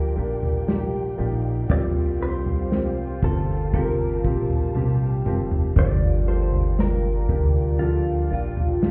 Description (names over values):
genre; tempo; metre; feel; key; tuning
pop ballad; 59 BPM; 4/4; straight; G minor; A4 = 440 Hz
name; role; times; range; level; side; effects
direct-recorded clean electric guitar; melody; 0.0-8.9 s; F4 to D5; -33 LUFS; equal; lush chorus
mellow French horn section; second line; 0.0-8.9 s; Eb4 to G4; -34 LUFS; equal; none
clear upright piano; accompaniment; 0.0-8.9 s; G2 to D5; -33 LUFS; equal; none
warm studio string section; sustained chords; 0.0-8.9 s; G4 to A5; -43 LUFS; equal; none
nylon-string guitar; arpeggios; 0.0-8.9 s; G2 to G4; -36 LUFS; equal; none
upright bass; bass; 0.0-8.9 s; F1 to D2; -27 LUFS; equal; none
unplugged drum kit; drums; 0.4-8.9 s; kick drum, snare drum, toms; -26 LUFS; equal; none
room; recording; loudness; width
small room ambience; heard muffled through a wall, club reverb, EQ; -23 LUFS; mono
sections
0.0-8.9 A section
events
drum fill 4.7-5.8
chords
0.0 Gm7/Bb; 1.7 C7sus4; 5.8 Gm7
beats
0.68 | 1.70 2.71 3.73 4.75 | 5.76 6.78 7.80 8.82